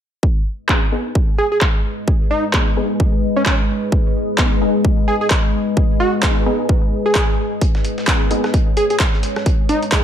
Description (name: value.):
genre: bass house.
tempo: 130 BPM.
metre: 4/4.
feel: swing 58% on 16ths.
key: G# minor.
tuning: A4 = 440 Hz.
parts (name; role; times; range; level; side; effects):
deep dark ambient pad; sustained chords; 1.8-10.0 s; G#3 to D#5; -22 LUFS; left 2 dB; chorus, built-in reverb, sidechain pumping.
electronic kick drum; drums; 0.2-10.0 s; none; -16 LUFS; equal; none.
orchestra-hit-like synth stab; stabs; 0.7-10.0 s; B3 to G#4; -23 LUFS; left 1 dB; built-in reverb, sidechain pumping, ping-pong delay.
electronic handclaps and rim click; drums; 0.7-10.0 s; none; -21 LUFS; equal; overdrive, low-pass filter on snare.
plucky unison lead; melody; 1.4-9.8 s; C#4 to G#4; -21 LUFS; right 1 dB; ping-pong delay.
dusty soul sampler-style drum kit; drums; 7.6-10.0 s; hi-hat, snare drum; -30 LUFS; equal; high-pass filter on hats, high-pass filter on snare, high-pass filter on room.
room: light reverb, digital ambience.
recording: none.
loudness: -15 LUFS.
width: side -9 dB against mid.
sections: 0.2-10.0 A section.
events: filter sweep on synth stab 0.2-10.0.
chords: 0.2 G#m.